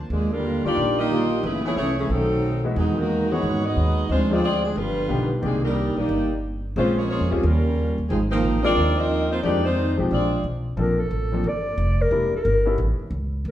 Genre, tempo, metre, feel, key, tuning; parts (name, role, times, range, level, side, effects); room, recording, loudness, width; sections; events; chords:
jazz; 180 BPM; 4/4; swing 64% on 8ths; Eb major; A4 = 440 Hz
upright bass; bass; 0.0-13.5 s; E1 to G#2; -24 LUFS; equal
mellow saxophone section; melody; 0.1-10.4 s; Fb3 to Eb5; -24 LUFS; left 1 dB
warm trombone section; second line; 0.1-10.4 s; B2 to Eb4; -26 LUFS; right 3 dB
clear baby grand piano; accompaniment; 0.6-12.8 s; Eb3 to D5; -28 LUFS; left 1 dB
dark clarinet; melody; 10.8-12.8 s; A4 to D5; -23 LUFS; left 2 dB
wet large studio reverb, RT60 1.3 s; heard from further back in the room; -20 LUFS; side -12 dB against mid
0.1-10.8 A section; 10.8-13.5 B section
clarinet solo 10.8-13.5
0.1 Ebmaj9; 1.4 Gbm11; 2.1 B7b9; 2.8 Emaj9; 4.1 Dm7b5; 4.8 G7b13; 5.4 Cm9; 6.8 Bbm7; 7.4 Eb9; 8.1 Ab69; 9.4 Fm7; 10.1 Bb9; 10.8 Bbmaj9; 12.1 Em7b5; 12.8 A